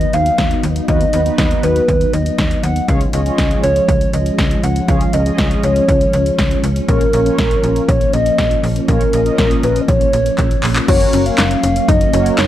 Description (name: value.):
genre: synth-pop.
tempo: 120 BPM.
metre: 4/4.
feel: straight.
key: F# major.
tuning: A4 = 437 Hz.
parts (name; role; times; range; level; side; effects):
hollow clarinet-like synth lead; melody; 0.0-12.5 s; A#4 to F#5; -18 LUFS; equal; chorus, phaser, analog delay.
soft string machine; sustained chords; 0.0-12.5 s; E#3 to D#4; -20 LUFS; equal; ensemble chorus.
slap-like FM bass; bass; 0.0-12.5 s; E#1 to D#2; -18 LUFS; equal; none.
punchy analog drum machine; drums; 0.0-12.5 s; crash cymbal, handclaps, hi-hat, kick drum, snare drum; -17 LUFS; equal; overdrive.
mellow synth brass; accompaniment; 0.9-12.5 s; A#3 to D#5; -23 LUFS; left 1 dB; chorus, phaser.
analog pluck; arpeggios; 10.9-12.5 s; C#4 to F#4; -22 LUFS; left 2 dB; chorus.
room: digital ambience.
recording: dry, gritty hardware recording.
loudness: -12 LUFS.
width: side -12 dB against mid.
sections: 0.0-10.9 A section; 10.9-12.5 B section.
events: drum fill 10.4-10.9.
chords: 0.0 B/D#; 2.9 C#; 6.9 A#m; 10.9 F#.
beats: 0.39 | 0.89 1.39 1.89 2.38 | 2.88 3.38 3.88 4.38 | 4.88 5.38 5.88 6.38 | 6.88 7.38 7.88 8.38 | 8.88 9.38 9.88 10.38 | 10.88 11.38 11.88 12.38.